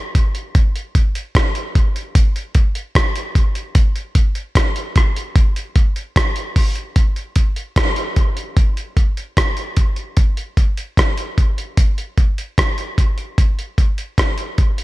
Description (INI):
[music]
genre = reggae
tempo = 75 BPM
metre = 4/4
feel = straight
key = none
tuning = none
[part]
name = dusty soul sampler-style drum kit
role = drums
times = 0.1-14.8 s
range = hi-hat, kick drum, rim click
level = -14 LUFS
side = equal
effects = none
[sound]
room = light reverb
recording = none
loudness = -15 LUFS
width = side -19 dB against mid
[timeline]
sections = 0.0-7.0 A section; 7.0-14.8 B section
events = none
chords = none